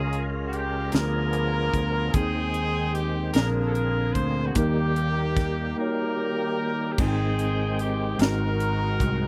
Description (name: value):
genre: slow gospel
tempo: 50 BPM (dotted quarters)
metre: 6/8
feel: straight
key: Ab major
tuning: A4 = 440 Hz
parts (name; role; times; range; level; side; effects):
- brilliant trumpet; melody; 0.0-9.3 s; Gb4 to C5; -34 LUFS; equal; slapback echo
- warm horn section; melody; 0.0-9.3 s; Bb3 to C5; -35 LUFS; equal; none
- mellow tine electric piano; accompaniment; 0.0-9.3 s; Ab2 to G5; -32 LUFS; equal; none
- overdriven tonewheel organ; sustained chords; 0.0-9.3 s; D3 to G5; -35 LUFS; equal; fast rotary speaker, chorus vibrato
- fingered electric bass; bass; 0.0-9.3 s; Ab1 to Eb2; -30 LUFS; equal; none
- crisp fusion drum kit; drums; 0.1-9.2 s; crash cymbal, hi-hat, kick drum, snare drum; -28 LUFS; equal; none
room: little or no reverb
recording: recorded outdoors, with no room sound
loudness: -25 LUFS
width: mono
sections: 0.0-7.0 A section; 7.0-9.3 A section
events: break 5.8-7.0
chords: 0.0 Db6; 0.9 Ddim7; 2.1 Abmaj7/Eb; 3.4 Bb9; 4.6 Eb; 7.0 Abmaj7; 8.2 Ab7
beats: 0.93 | 2.14 3.35 | 4.56 5.77 | 6.99 8.20